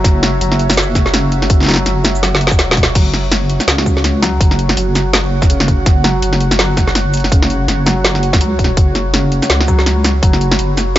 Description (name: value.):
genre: half-time drum and bass.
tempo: 165 BPM.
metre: 4/4.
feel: swing 58% on 16ths, half-time.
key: unclear.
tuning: A4 = 441 Hz.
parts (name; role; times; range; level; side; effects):
deep dark ambient pad; sustained chords; 0.0-11.0 s; F#4 to B5; -22 LUFS; right 3 dB; chorus, built-in reverb, sidechain pumping.
felt-muted upright piano; arpeggios; 0.0-11.0 s; C#3 to F#3; -21 LUFS; left 2 dB; dub echo.
deep soft wobble bass; bass; 0.0-11.0 s; E1 to C#2; -16 LUFS; equal; chorus, tube saturation.
drum and bass drum kit; drums; 0.0-11.0 s; crash cymbal, hi-hat, shaker, snare drum; -15 LUFS; equal; none.
electronic kick drum; drums; 0.0-10.3 s; none; -12 LUFS; equal; none.
room: little or no reverb.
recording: nothing above 7.7 kHz.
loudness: -11 LUFS.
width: side -13 dB against mid.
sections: 0.0-3.0 A section; 3.0-11.0 A section.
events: drop 0.0-3.0, 3.0-11.0; drum fill 2.2-3.0.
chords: 0.0 F#5.